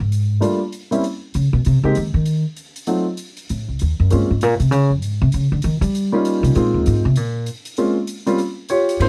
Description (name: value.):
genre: jazz piano trio.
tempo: 196 BPM.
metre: 4/4.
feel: swing 62% on 8ths.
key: unclear.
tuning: A4 = 440 Hz.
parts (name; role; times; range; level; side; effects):
upright bass; bass; 0.0-9.1 s; C2 to G3; -19 LUFS; equal; none.
swinging big-band drum kit; drums; 0.1-9.1 s; hi-hat, kick drum, ride cymbal; -38 LUFS; equal; none.
warm baby grand piano; melody; 0.4-9.1 s; Gb3 to Db5; -21 LUFS; equal; none.
room: little or no reverb.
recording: dark, warm production.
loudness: -19 LUFS.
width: mono.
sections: 0.0-9.0 A section.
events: upright bass solo 0.0-9.0.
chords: 0.4 Gm7; 1.0 Bsus2; 1.6 Cm; 2.9 F7b9 (rootless); 4.1 Bbm9; 5.3 Eb9; 6.5 Ab69; 7.8 Bbm7; 8.4 Fsus2.